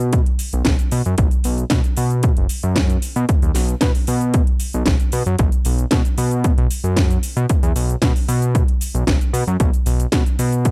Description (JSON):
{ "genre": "nu-disco, nu disco", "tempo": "114 BPM", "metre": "4/4", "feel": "straight", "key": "unclear", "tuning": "A4 = 440 Hz", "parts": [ { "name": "fat analog bass", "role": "bass", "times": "0.0-10.7 s", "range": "F#1 to B2", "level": "-18 LUFS", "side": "equal", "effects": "none" }, { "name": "house drum kit", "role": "drums", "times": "0.0-10.7 s", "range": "hi-hat, shaker, snare drum", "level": "-24 LUFS", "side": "equal", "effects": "overdrive" }, { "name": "electronic kick drum", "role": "drums", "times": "0.1-10.7 s", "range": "none", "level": "-17 LUFS", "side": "equal", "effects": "overdrive" } ], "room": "little or no reverb", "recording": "dry, gritty hardware recording", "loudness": "-15 LUFS", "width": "side -31 dB against mid", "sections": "0.0-10.7 A section", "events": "none", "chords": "none" }